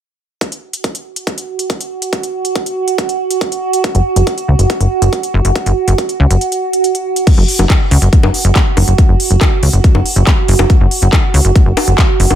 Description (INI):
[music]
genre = psychedelic trance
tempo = 140 BPM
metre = 4/4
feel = straight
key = unclear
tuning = A4 = 443 Hz
[part]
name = evolving wavetable pad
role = sustained chords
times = 1.4-12.4 s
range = F#4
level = -17 LUFS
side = right 5 dB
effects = chorus, built-in reverb, sidechain pumping
[part]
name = electronic kick drum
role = drums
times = 0.4-12.1 s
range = none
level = -12 LUFS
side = equal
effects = high-pass filter on kick, studio reverb, high-pass filter on room
[part]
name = techno drum kit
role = drums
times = 0.4-12.4 s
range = bongos, crash cymbal, handclaps, hi-hat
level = -18 LUFS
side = left 2 dB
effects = overdrive, studio reverb
[part]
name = plucky analog bass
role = bass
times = 3.9-12.4 s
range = F#1 to C#2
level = -10 LUFS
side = equal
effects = none
[sound]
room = little or no reverb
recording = none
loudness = -10 LUFS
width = side -10 dB against mid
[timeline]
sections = 0.4-7.3 A section; 7.3-12.4 B section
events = break 6.4-7.3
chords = 0.4 F#5